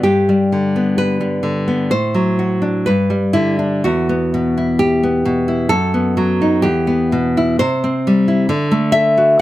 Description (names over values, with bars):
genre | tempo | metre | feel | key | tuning
romantic piece for solo classical guitar | 59-68 BPM | 2/4 | rubato | G major | A4 = 440 Hz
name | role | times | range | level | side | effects
nylon-string guitar | solo | 0.0-9.4 s | E2 to E5 | -13 LUFS | equal | none
room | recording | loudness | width
light reverb | none | -14 LUFS | side -15 dB against mid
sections
0.0-9.4 A section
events
none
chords
0.0 G; 1.9 D7/A; 2.9 G; 3.8 Em; 5.7 B7/F#; 6.7 Em; 7.6 C; 8.5 D7